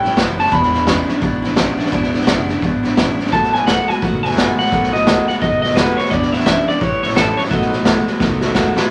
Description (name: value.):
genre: rockabilly.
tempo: 172 BPM.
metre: 4/4.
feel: swing 62% on 8ths.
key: unclear.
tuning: A4 = 440 Hz.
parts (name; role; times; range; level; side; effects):
electric guitar through a small old amp; melody; 0.0-1.2, 3.3-8.6 s; A4 to B5; -20 LUFS; equal; vibrato effect.
picked steel-string acoustic guitar; accompaniment; 0.0-8.9 s; E2 to F#4; -24 LUFS; equal; none.
electric guitar through a small old amp; riff; 0.0-8.9 s; E2 to G#3; -24 LUFS; equal; none.
upright bass; bass; 0.0-8.8 s; E1 to E2; -31 LUFS; equal; none.
raw garage drum kit; drums; 0.0-8.8 s; hi-hat, kick drum, snare drum; -20 LUFS; equal; none.
room: light reverb.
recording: none.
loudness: -16 LUFS.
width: mono.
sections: 0.0-8.9 A section.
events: drum fill 8.2-8.9.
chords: 0.0 A7; 0.5 E7; 3.3 B7; 6.1 E7; 6.8 A7; 7.5 B7.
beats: 0.17 | 0.52 0.87 1.22 1.57 | 1.92 2.27 2.62 2.97 | 3.32 3.67 4.02 4.37 | 4.72 5.07 5.42 5.76 | 6.11 6.46 6.81 7.16 | 7.51 7.86 8.21 8.55 | 8.90.